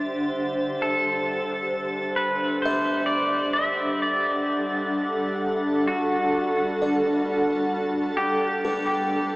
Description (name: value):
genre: ambient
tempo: 65 BPM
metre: 4/4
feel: straight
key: unclear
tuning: A4 = 437 Hz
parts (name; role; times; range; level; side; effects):
- pedal steel guitar; melody; 0.0-9.4 s; F#4 to E5; -26 LUFS; equal; lush chorus, diffuse ambient delay
- granular cloud pad; sustained chords; 0.0-9.4 s; D3 to F#5; -25 LUFS; equal; built-in reverb
- bowed-like drone; drone; 0.0-2.3 s; G3 to G4; -42 LUFS; equal; built-in reverb
- dark symphonic violin section; texture; 0.0-9.4 s; A6; -40 LUFS; equal; none
- buzzing kalimba; arpeggios; 2.7-9.4 s; A4 to E5; -34 LUFS; equal; diffuse ambient delay
room: wet huge ambient reverb, RT60 7.8 s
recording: dreamy mix soaked in reverb, AM radio sound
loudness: -22 LUFS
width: side -22 dB against mid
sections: 0.0-2.2 A section; 2.2-9.4 B section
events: fade-in on violin section 2.2-9.4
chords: 0.0 D7sus4; 2.2 G5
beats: 0.34 1.26 | 2.19 3.11 4.03 4.96 | 5.88 6.80 7.73 8.65